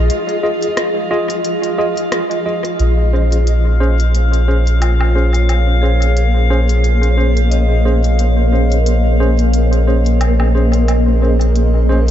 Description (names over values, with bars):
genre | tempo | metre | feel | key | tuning
ambient dub | 89 BPM | 4/4 | swing 56% on 16ths | Bb minor | A4 = 442 Hz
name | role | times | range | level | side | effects
granular cloud pad | sustained chords | 0.0-12.1 s | Bb3 to Eb5 | -20 LUFS | equal | built-in reverb
vibraphone with medium hard mallets | arpeggios | 0.0-12.1 s | F4 to Eb5 | -28 LUFS | left 3 dB | low-pass filter, ping-pong delay
soft dub sub bass | bass | 0.0-12.1 s | Bb1 | -12 LUFS | equal | none
drifting glass-harmonics texture | texture | 0.0-12.1 s | F5 | -26 LUFS | left 2 dB | chorus, built-in reverb
organic electronic drum kit | drums | 0.1-12.1 s | hi-hat, rim click, woodblock | -28 LUFS | left 1 dB | dub echo
tine electric piano | stabs | 0.4-12.0 s | Db4 to Eb5 | -21 LUFS | right 1 dB | medium tremolo, vintage 12-bit sampler grit, dub echo
room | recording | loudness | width
light reverb | nothing above 7.8 kHz | -12 LUFS | side -11 dB against mid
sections
0.0-2.8 A section; 2.8-12.1 B section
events
break 0.1-2.8; filter sweep on ambient pad 2.8-12.1; filter sweep on vibraphone 2.8-12.1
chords
0.0 Fm7/Bb; 2.8 Bbm9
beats
| 0.10 0.77 1.45 2.12 | 2.79 3.47 4.14 4.82 | 5.49 6.17 6.84 7.51 | 8.19 8.86 9.54 10.21 | 10.88 11.56